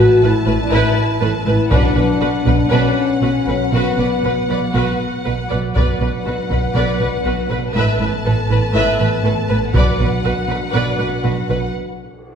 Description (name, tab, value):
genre	cinematic, epic orchestral film score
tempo	120 BPM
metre	4/4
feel	straight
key	B minor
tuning	A4 = 437 Hz
part	warm symphonic violin section	melody	0.0-11.7 s	F#5 to A5	-27 LUFS	left 2 dB	none
part	warm symphonic violin section	second line	0.0-11.6 s	D4 to E5	-25 LUFS	left 2 dB	none
part	warm symphonic viola section	accompaniment	0.0-11.6 s	B4	-23 LUFS	right 1 dB	none
part	mellow French horn section	sustained chords	0.0-11.7 s	B3 to B4	-20 LUFS	left 3 dB	none
part	rich symphonic double bass section	bass	0.0-11.6 s	A1 to B1	-21 LUFS	right 2 dB	none
part	warm symphonic cello section	bass	0.0-11.6 s	A2 to B2	-21 LUFS	right 2 dB	none
part	solo taiko drums	drums	1.7-2.7, 5.8-6.7, 9.7-10.7 s	none	-19 LUFS	equal	none
part	cymbal swell	sound effects	12.0-12.3 s	none	-44 LUFS	right 1 dB	none
room	wet scoring stage reverb, RT60 1.5 s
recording	heard from further back in the room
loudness	-14 LUFS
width	side -7 dB against mid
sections	0.0-5.8 A section; 5.8-12.3 B section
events	break 11.7-12.3; cymbal swell 12.0-12.3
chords	0.0 Asus2; 1.7 Bm; 7.8 Asus2; 9.7 Bm; 11.7 N.C.